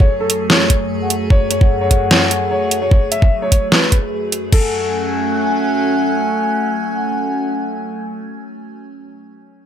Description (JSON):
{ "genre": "heavy wobble dubstep", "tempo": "149 BPM", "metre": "4/4", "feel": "half-time", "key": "F# minor", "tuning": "A4 = 441 Hz", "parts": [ { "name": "dark baby grand piano", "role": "melody", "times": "0.0-8.2 s", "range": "A4 to E5", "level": "-21 LUFS", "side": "left 2 dB", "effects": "ping-pong delay" }, { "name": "evolving wavetable pad", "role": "sustained chords", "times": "0.0-8.2 s", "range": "F#2 to G#5", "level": "-21 LUFS", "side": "right 1 dB", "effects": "phaser, built-in reverb, sidechain pumping" }, { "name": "electronic kick drum", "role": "drums", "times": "0.0-4.6 s", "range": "none", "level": "-12 LUFS", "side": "equal", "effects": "none" }, { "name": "dubstep drum kit", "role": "drums", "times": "0.3-4.6 s", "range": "crash cymbal, hi-hat, snare drum", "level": "-15 LUFS", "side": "right 1 dB", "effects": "none" }, { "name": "dark brass ensemble", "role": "stabs", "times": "1.0-8.2 s", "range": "A3 to G#5", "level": "-21 LUFS", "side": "left 2 dB", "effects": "low-pass filter, ping-pong delay" } ], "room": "light reverb", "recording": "none", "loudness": "-14 LUFS", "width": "side -9 dB against mid", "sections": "0.0-4.5 A section; 4.5-7.7 B section", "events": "none", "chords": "0.0 F#madd9" }